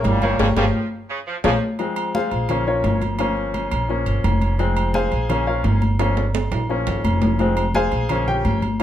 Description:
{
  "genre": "latin, salsa",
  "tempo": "171 BPM",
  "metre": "4/4",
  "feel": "straight",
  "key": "unclear",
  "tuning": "A4 = 439 Hz",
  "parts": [
    { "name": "bright trombone section", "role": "melody", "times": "0.0-1.5 s", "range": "Bb2 to G3", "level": "-23 LUFS", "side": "equal", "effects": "none" },
    { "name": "bright upright piano", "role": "accompaniment", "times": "0.0-8.8 s", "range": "F3 to Ab5", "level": "-23 LUFS", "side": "left 2 dB", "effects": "none" },
    { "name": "upright bass", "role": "bass", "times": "0.0-8.8 s", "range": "F1 to Bb1", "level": "-22 LUFS", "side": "right 1 dB", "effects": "none" },
    { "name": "congas", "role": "percussion", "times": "0.0-8.8 s", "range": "none", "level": "-26 LUFS", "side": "left 2 dB", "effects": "none" },
    { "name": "timbales and agogo bells", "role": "percussion", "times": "0.0-8.8 s", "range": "none", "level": "-27 LUFS", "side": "right 5 dB", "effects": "none" },
    { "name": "cowbell", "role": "percussion", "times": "0.1-1.5 s", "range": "none", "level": "-28 LUFS", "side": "left 5 dB", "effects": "none" },
    { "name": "edgy saxophone section", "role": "second line", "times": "0.2-1.6 s", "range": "Db3 to F3", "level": "-29 LUFS", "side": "right 4 dB", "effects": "none" }
  ],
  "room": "moderate large studio reverb, RT60 0.9 s",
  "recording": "none",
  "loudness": "-18 LUFS",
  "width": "side -11 dB against mid",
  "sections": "0.0-1.8 A section; 1.8-8.8 B section",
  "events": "band accent 0.4-1.8; drum fill 0.7-1.8, 6.0-7.4; upright piano solo 1.8-8.8",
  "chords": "0.4 Gm7b5; 1.1 Bbm; 1.8 Fm; 2.5 Bbm; 3.2 Gm7b5; 3.9 Bbm; 4.6 Fm; 5.3 Bbm; 6.0 Gm7b5; 6.7 Bbm; 7.4 Fm; 8.1 Bbm"
}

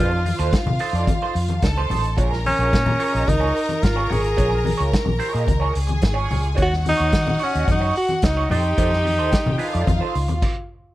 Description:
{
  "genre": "disco",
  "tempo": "109 BPM",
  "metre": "4/4",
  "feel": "straight",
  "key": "unclear",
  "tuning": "A4 = 440 Hz",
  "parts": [
    { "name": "mellow tenor saxophone", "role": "melody", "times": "0.0-10.4 s", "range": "Db4 to Ab4", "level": "-22 LUFS", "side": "equal", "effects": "none" },
    { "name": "clear symphonic string section", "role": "second line", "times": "0.0-10.4 s", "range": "F4 to Bb5", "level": "-28 LUFS", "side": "equal", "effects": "none" },
    { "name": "electric guitar through a small old amp", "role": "accompaniment", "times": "0.0-10.3 s", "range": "Eb4 to Eb5", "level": "-28 LUFS", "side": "right 5 dB", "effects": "wah, spring reverb" },
    { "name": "vintage muted fingered electric bass", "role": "bass", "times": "0.0-10.4 s", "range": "Ab1 to Eb3", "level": "-22 LUFS", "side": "equal", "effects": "none" },
    { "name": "congas", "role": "percussion", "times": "0.1-10.4 s", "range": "none", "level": "-28 LUFS", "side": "left 4 dB", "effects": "none" },
    { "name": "vintage drum kit", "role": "drums", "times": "0.3-10.6 s", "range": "crash cymbal, hi-hat, kick drum, snare drum", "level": "-23 LUFS", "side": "equal", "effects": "none" }
  ],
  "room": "little or no reverb",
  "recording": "none",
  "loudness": "-18 LUFS",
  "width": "side -16 dB against mid",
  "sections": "0.0-10.9 A section",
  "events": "stop 10.4-10.9",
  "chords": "0.0 F7; 2.2 Bbm7; 6.6 Ebm7; 8.5 F7"
}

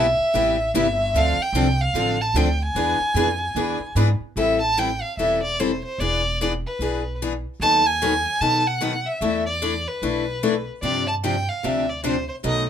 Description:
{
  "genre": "acoustic string swing (jazz manouche)",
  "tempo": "149 BPM",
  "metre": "4/4",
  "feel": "swing 61% on 8ths",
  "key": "A minor",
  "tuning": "A4 = 441 Hz",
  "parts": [
    { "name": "rich violin", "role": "melody", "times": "0.0-12.7 s", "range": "B4 to A5", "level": "-22 LUFS", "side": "right 1 dB", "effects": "none" },
    { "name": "picked steel-string acoustic guitar", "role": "accompaniment", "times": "0.0-12.7 s", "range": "B2 to A4", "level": "-24 LUFS", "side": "left 5 dB", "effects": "none" },
    { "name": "picked steel-string acoustic guitar", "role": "accompaniment", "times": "0.0-4.1, 10.8-12.7 s", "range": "B2 to B4", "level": "-29 LUFS", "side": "right 6 dB", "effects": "none" },
    { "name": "upright bass", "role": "bass", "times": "0.0-12.7 s", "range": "E1 to B2", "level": "-26 LUFS", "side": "right 1 dB", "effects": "none" }
  ],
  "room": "moderate small room reverb, RT60 0.5 s",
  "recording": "minimal, uncompressed stereo recording",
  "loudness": "-19 LUFS",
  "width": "side -9 dB against mid",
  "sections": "0.0-4.4 A section; 4.4-12.7 B section",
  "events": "none",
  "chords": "0.0 Cmaj7; 1.1 Dm7; 2.8 E7; 4.4 Am7; 6.0 E7; 7.6 B7/D#; 9.2 E7sus4; 10.8 G7sus4"
}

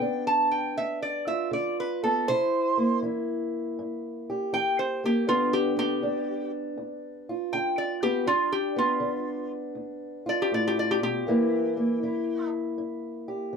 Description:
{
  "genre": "acoustic country blues, solo or duo",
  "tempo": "80 BPM",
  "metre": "4/4",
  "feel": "swing 66% on 8ths",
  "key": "G mixolydian",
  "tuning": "A4 = 441 Hz",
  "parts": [
    { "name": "lap resonator guitar", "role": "melody", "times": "0.0-12.5 s", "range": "F4 to A5", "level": "-26 LUFS", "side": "equal", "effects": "none" },
    { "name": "fingerpicked old ladder-braced acoustic guitar", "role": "accompaniment", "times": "0.0-13.6 s", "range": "D2 to G4", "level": "-28 LUFS", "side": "equal", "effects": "none" }
  ],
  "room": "moderate studio reverb, RT60 0.6 s",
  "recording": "none",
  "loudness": "-25 LUFS",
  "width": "side -6 dB against mid",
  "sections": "0.0-13.6 A section",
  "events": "none",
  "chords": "0.0 G7; 2.3 C7; 5.3 G7; 11.3 C7"
}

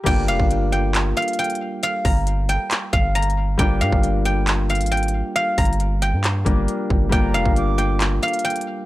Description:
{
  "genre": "hip hop, trap",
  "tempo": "136 BPM",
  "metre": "4/4",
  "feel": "half-time",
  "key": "G minor",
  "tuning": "A4 = 440 Hz",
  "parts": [
    { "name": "guzheng", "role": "melody", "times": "0.0-8.9 s", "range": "F4 to Bb5", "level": "-23 LUFS", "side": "equal", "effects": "none" },
    { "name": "concert harp", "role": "accompaniment", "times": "0.0-8.9 s", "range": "G3 to F4", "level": "-26 LUFS", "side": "left 2 dB", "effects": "none" },
    { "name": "long sustained 808-style bass", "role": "bass", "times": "0.1-8.2 s", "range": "F1 to G2", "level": "-21 LUFS", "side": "equal", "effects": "tube saturation" },
    { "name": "trap drum kit", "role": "drums", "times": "0.1-8.7 s", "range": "crash cymbal, handclaps, hi-hat, kick drum", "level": "-22 LUFS", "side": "equal", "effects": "none" },
    { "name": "concert flute", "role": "second line", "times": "7.1-8.0 s", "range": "Bb5 to D6", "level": "-32 LUFS", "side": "right 5 dB", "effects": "tape echo" }
  ],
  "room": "little or no reverb",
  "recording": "dry, gritty hardware recording",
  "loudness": "-18 LUFS",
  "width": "side -16 dB against mid",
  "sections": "0.1-8.9 A section",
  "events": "none",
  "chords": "0.1 Gm7"
}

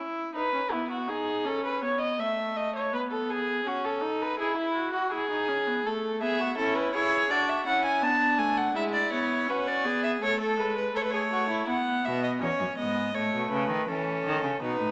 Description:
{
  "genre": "classical, baroque-style fugue for string quartet",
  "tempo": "82 BPM",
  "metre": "4/4",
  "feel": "straight",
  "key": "A major",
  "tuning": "A4 = 440 Hz",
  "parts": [
    { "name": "warm viola", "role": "accompaniment", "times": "0.0-14.9 s", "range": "G#3 to F#4", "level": "-34 LUFS", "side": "equal", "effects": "none" },
    { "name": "dark violin", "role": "second line", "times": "0.4-11.7 s", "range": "D4 to E5", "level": "-32 LUFS", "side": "equal", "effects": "none" },
    { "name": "rich violin", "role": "melody", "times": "6.2-14.9 s", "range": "A4 to A5", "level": "-30 LUFS", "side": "equal", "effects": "none" },
    { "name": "warm cello", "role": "bass", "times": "12.1-14.9 s", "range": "E2 to E3", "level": "-33 LUFS", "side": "equal", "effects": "none" }
  ],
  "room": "wet recital hall reverb, RT60 1.5 s",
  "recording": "small speaker sound",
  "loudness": "-28 LUFS",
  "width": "mono",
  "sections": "0.0-14.9 A section",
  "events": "none",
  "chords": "0.0 E; 1.5 A; 2.9 B; 4.4 E; 5.9 A; 7.3 D; 8.8 E/G#; 10.2 A; 11.7 E/B (rootless); 13.1 A"
}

